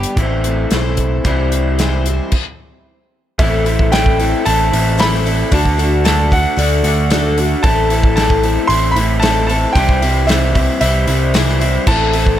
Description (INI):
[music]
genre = folk rock and heartland rock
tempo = 113 BPM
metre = 4/4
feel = straight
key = A dorian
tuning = A4 = 439 Hz
[part]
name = picked twelve-string acoustic guitar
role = accompaniment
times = 0.0-12.4 s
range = A2 to C5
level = -21 LUFS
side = left 5 dB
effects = none
[part]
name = electric guitar through a small old amp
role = riff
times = 0.0-12.4 s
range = G2 to G4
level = -19 LUFS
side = right 1 dB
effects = none
[part]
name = picked electric bass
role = bass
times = 0.0-12.4 s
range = A1 to D2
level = -17 LUFS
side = equal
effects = none
[part]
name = natural country drum kit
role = drums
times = 0.0-12.4 s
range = crash cymbal, hi-hat, kick drum, snare drum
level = -18 LUFS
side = equal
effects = none
[part]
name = bright concert grand piano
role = melody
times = 3.4-12.4 s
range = E5 to C6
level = -19 LUFS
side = equal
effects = none
[sound]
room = light reverb, small room ambience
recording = none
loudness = -12 LUFS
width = side -11 dB against mid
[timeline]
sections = 0.0-3.4 A section; 3.4-12.4 B section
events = stop 2.3-3.4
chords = 0.2 Am; 1.3 C; 2.3 N.C.; 3.4 Am; 5.5 D; 7.6 Am; 9.8 C; 11.9 Am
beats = 0.18 0.72 | 1.26 1.79 2.33 2.86 | 3.39 3.92 4.46 4.99 | 5.52 6.05 6.58 7.11 | 7.64 8.17 8.70 9.23 | 9.76 10.29 10.81 11.34 | 11.87